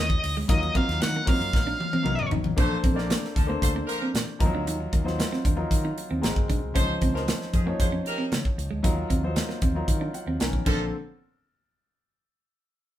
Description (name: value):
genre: polished 1980s jazz-funk pop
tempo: 115 BPM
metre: 4/4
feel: straight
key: unclear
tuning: A4 = 440 Hz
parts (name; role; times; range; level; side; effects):
- octave-fuzz lead guitar; melody; 0.0-2.3 s; Eb5 to Gb5; -28 LUFS; right 1 dB; distortion
- warm baby grand piano; accompaniment; 0.0-10.9 s; D3 to Bb5; -31 LUFS; left 2 dB; none
- clean electric guitar; riff; 0.0-10.8 s; Ab3 to Eb4; -32 LUFS; right 3 dB; none
- fretless electric bass; bass; 0.0-10.9 s; F1 to Eb3; -31 LUFS; equal; none
- modern studio drum kit; drums; 0.1-10.8 s; crash cymbal, hi-hat, kick drum, ride cymbal, snare drum, toms; -25 LUFS; equal; none
- warm horn section; second line; 2.6-10.8 s; F3 to C5; -32 LUFS; right 1 dB; none
room: moderate studio reverb, RT60 0.6 s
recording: band playing live in one room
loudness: -23 LUFS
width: side -12 dB against mid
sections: 0.0-2.6 A section; 2.6-10.9 B section; 10.9-13.0 C section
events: drum fill 1.5-2.6; grand piano fill 6.0-6.8, 9.9-10.9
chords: 0.5 Ebmadd9; 2.1 Bmaj9; 2.6 Bbmaj9; 4.4 Ebmadd9; 6.2 Ab9; 6.8 Dbmaj9; 8.8 Ebmadd9; 10.4 Bmaj9; 10.7 Bbmaj9; 10.9 N.C.